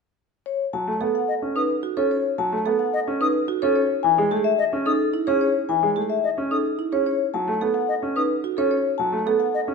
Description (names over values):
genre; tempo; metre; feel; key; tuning
classical, minimalist pattern music; 109 BPM; 3/4; straight; B mixolydian; A4 = 437 Hz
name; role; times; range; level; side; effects
vibraphone with medium mallets; melody; 0.5-9.6 s; G#4 to A5; -24 LUFS; left 9 dB; none
warm baby grand piano; accompaniment; 0.7-9.7 s; E3 to C#4; -27 LUFS; equal; none
marimba with medium mallets; arpeggios; 1.0-9.4 s; D#4 to C#5; -25 LUFS; right 9 dB; none
silver concert flute; arpeggios; 1.3-9.6 s; D#5 to D#6; -28 LUFS; left 2 dB; none
room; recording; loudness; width
moderate recital hall reverb, RT60 1.5 s; none; -20 LUFS; side -4 dB against mid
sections
0.5-9.7 A section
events
none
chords
0.5 B7; 3.8 Amaj7; 7.1 B7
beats
| 0.46 1.01 1.56 | 2.11 2.66 3.21 | 3.76 4.31 4.86 | 5.41 5.96 6.51 | 7.06 7.61 8.16 | 8.71 9.27